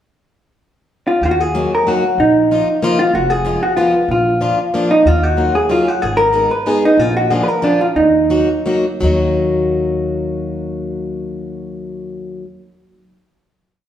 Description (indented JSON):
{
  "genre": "musette waltz",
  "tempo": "162-191 BPM",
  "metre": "3/4",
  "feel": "rubato",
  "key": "Eb harmonic minor",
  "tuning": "A4 = 439 Hz",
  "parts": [
    { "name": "vintage hollow-body jazz guitar", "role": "melody", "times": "1.1-8.6 s", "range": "D4 to Cb5", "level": "-14 LUFS", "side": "equal", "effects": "none" },
    { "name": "upright bass", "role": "bass", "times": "1.2-12.4 s", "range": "F1 to Eb2", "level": "-22 LUFS", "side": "equal", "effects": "none" },
    { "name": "picked plugged-in acoustic archtop guitar", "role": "accompaniment", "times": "1.5-12.5 s", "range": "F3 to Ab4", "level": "-19 LUFS", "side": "left 2 dB", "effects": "none" }
  ],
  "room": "wet large studio reverb, RT60 1.5 s",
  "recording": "band playing live in one room",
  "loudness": "-13 LUFS",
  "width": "side -10 dB against mid",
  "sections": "0.2-1.2 pickup bar; 1.2-9.0 A section; 9.0-11.2 final chord",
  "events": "slowing down 7.0-9.0",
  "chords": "0.2 N.C.; 1.2 Ebm; 2.2 Bbsus4; 3.1 Fdim; 4.1 Bb; 5.1 Ebmadd9; 6.0 Abm; 7.0 Bb; 8.0 Ebm",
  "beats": "| 0.24 0.57 0.89 | 1.21 1.54 1.87 | 2.19 2.51 2.82 | 3.14 3.46 3.77 | 4.09 4.42 4.74 | 5.06 5.39 5.71 | 6.03 6.35 6.66 | 6.98 7.30 7.62 | 7.95 8.30 8.65 | 9.02 9.39 9.75 | 10.11 10.47 10.84"
}